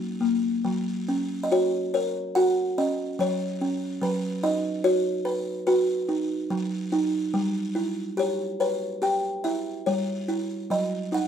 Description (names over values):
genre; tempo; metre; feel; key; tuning
children's music, lullaby; 71 BPM; 4/4; rubato; unclear; A4 = 440 Hz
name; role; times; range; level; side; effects
buzzing kalimba; solo; 0.0-11.3 s; F#3 to G5; -24 LUFS; equal; none
room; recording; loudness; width
moderate large studio reverb, RT60 1.0 s; band playing live in one room; -24 LUFS; side -8 dB against mid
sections
0.6-11.3 A section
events
none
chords
0.0 F#; 4.0 B/F#; 7.3 Em/G; 10.7 B/F# (rootless)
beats
| 0.63 1.50 2.35 3.19 | 4.01 4.84 5.67 6.50 | 7.33 8.17 9.01 9.86 | 10.70